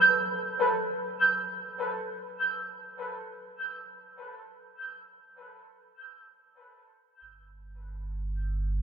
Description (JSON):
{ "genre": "ambient", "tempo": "free time", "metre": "none", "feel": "none", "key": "unclear", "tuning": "A4 = 440 Hz", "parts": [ { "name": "soft round pluck", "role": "arpeggios", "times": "0.0-3.2 s", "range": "F#3 to G6", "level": "-25 LUFS", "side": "right 2 dB", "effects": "chorus, diffuse ambient delay" }, { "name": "warm sub bass", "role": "bass", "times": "7.2-8.8 s", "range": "G1", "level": "-33 LUFS", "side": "right 1 dB", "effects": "none" } ], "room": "wet cathedral reverb, RT60 5.0 s", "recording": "in a vast, echoing space", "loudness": "-28 LUFS", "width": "side -6 dB against mid", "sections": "0.0-7.2 A section; 7.2-8.8 B section", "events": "none", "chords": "0.0 F#sus4; 7.2 N.C." }